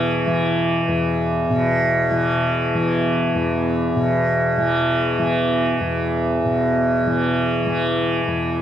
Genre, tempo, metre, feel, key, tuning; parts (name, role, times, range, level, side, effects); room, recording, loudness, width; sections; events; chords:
world meditative, free-time meditation music; free time; A4 = 444 Hz
tanpura; solo; 0.0-8.6 s; E2 to E3; -17 LUFS; equal
wet cathedral reverb, RT60 6.2 s; dark, warm production; -17 LUFS; side -10 dB against mid
0.0-8.6 A section